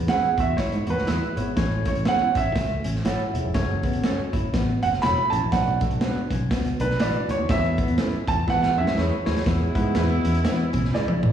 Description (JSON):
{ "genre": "uptempo 1960s-style soul", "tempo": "122 BPM", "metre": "4/4", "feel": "swing 59% on 8ths", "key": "unclear", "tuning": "A4 = 440 Hz", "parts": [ { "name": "bright tine electric piano", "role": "accompaniment", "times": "0.0-10.4 s", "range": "B3 to F#5", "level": "-31 LUFS", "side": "left 3 dB", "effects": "medium stereo tremolo, slapback echo" }, { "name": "fingered electric bass", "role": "bass", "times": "0.0-11.3 s", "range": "E1 to E3", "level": "-25 LUFS", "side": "equal", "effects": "none" }, { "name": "warm grand piano", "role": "melody", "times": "0.1-11.3 s", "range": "B4 to B5", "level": "-25 LUFS", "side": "right 4 dB", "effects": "slapback echo" }, { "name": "electric guitar through a small old amp", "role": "riff", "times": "0.1-11.3 s", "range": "G#3 to F#4", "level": "-32 LUFS", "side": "left 6 dB", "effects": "slapback echo" }, { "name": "mellow electric guitar", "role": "stabs", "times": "0.1-11.1 s", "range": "D4 to C#5", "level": "-33 LUFS", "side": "right 5 dB", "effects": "harmonic tremolo, slapback echo" }, { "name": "crunchy breakbeat drum kit", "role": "drums", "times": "0.1-11.3 s", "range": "hi-hat, kick drum, snare drum, toms", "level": "-26 LUFS", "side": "right 1 dB", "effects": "none" }, { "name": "clear horn section", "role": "second line", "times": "9.5-11.2 s", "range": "B2 to E4", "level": "-30 LUFS", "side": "right 2 dB", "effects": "slapback echo" } ], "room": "light reverb", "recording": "live gig heard through the venue's PA, recital hall reverb, small room ambience", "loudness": "-20 LUFS", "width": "side -9 dB against mid", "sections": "0.0-9.5 A section; 9.5-11.3 B section", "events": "grand piano solo 0.0-9.5; drum fill 8.5-9.5, 10.9-11.3", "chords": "0.0 E; 1.6 A; 3.5 F#m; 5.5 Bm; 7.5 Esus4; 8.5 E" }